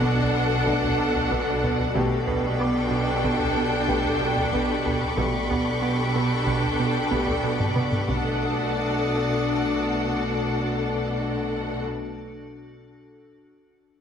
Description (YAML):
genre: cinematic, suspense film score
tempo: 93 BPM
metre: 5/4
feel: straight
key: B minor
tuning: A4 = 440 Hz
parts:
  - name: clear symphonic violin section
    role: melody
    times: 0.0-11.8 s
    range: F#5 to G5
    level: -32 LUFS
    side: equal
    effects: none
  - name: rich symphonic violin section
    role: second line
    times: 0.0-11.8 s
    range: A4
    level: -31 LUFS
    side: left 2 dB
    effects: none
  - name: clear symphonic viola section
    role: accompaniment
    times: 0.0-11.8 s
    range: D4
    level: -31 LUFS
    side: right 1 dB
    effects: none
  - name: icy glass pad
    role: sustained chords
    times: 0.0-11.9 s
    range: D4 to D5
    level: -32 LUFS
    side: left 1 dB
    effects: chorus, built-in reverb
  - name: plucky analog bass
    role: riff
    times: 0.0-8.0 s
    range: B2 to B3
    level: -29 LUFS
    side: right 4 dB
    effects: none
  - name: rich studio double bass section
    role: bass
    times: 0.0-11.8 s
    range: B1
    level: -30 LUFS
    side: right 1 dB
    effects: none
  - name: rich symphonic cello section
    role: bass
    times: 0.0-11.8 s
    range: B2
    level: -31 LUFS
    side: right 1 dB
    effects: none
  - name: solo taiko drums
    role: drums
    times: 0.0-9.3 s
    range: none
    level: -30 LUFS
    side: equal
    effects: none
  - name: warm French horn section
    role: sustained chords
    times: 0.7-11.9 s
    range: A3 to G4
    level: -31 LUFS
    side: left 5 dB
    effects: none
  - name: bright grand piano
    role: texture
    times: 1.0-8.4 s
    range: A4 to D6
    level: -36 LUFS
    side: equal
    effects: none
  - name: rich studio violin section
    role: texture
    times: 1.9-11.3 s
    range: B5 to D#6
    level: -34 LUFS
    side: left 2 dB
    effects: none
room: moderate scoring stage reverb, RT60 1.9 s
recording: heavily compressed radio sound, multiband compression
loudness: -22 LUFS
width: side -7 dB against mid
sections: 0.0-8.4 A section; 8.4-11.6 B section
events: drum fill 7.6-8.4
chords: 0.0 Bm7; 2.0 Gadd9/B; 8.1 Bm7